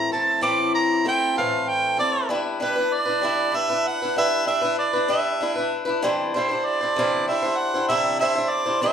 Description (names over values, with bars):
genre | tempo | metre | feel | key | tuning
rock | 65 BPM (dotted quarters) | 6/8 | straight | G major | A4 = 444 Hz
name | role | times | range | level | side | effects
mellow harmonica | melody | 0.0-8.9 s | B4 to D6 | -22 LUFS | right 3 dB | none
picked swing-style acoustic guitar | accompaniment | 0.0-8.9 s | A2 to C5 | -23 LUFS | left 2 dB | none
room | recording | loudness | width
wet large studio reverb, RT60 1.1 s | band playing live in one room | -20 LUFS | side -8 dB against mid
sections
0.0-2.3 A section; 2.3-8.9 B section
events
harmonica solo 0.0-2.3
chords
0.0 Am; 2.3 G6; 6.0 Cadd9